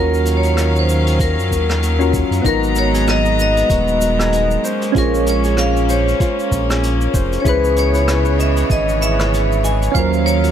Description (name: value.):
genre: sunset chillout.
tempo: 96 BPM.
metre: 4/4.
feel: swing 58% on 16ths.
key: G# minor.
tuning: A4 = 439 Hz.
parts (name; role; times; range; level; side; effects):
vibraphone with hard mallets; melody; 0.0-10.5 s; A#4 to G#5; -20 LUFS; left 1 dB; ping-pong delay.
soft electric-piano-like synth keys; accompaniment; 0.0-10.5 s; F#3 to A#5; -20 LUFS; moving between left 5 dB and right 8 dB; chorus, auto-pan, digital delay.
rich chamber string section; sustained chords; 0.0-10.5 s; C#3 to A#5; -23 LUFS; left 2 dB; none.
round analog bass; bass; 0.0-10.5 s; D#1 to F#2; -18 LUFS; equal; none.
jazz brush drum kit; drums; 0.1-10.5 s; cabasa, hi-hat, rim click; -28 LUFS; equal; none.
electronic kick drum; drums; 1.2-10.1 s; none; -19 LUFS; equal; none.
concert harp; arpeggios; 2.4-10.5 s; E#4 to D#5; -26 LUFS; right 3 dB; digital delay.
room: light reverb, small room ambience.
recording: none.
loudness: -14 LUFS.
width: side -9 dB against mid.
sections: 0.0-10.5 A section.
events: none.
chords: 0.0 D#m9; 2.4 G#m9; 4.6 A#m9; 7.4 C#m9; 9.9 D#m9.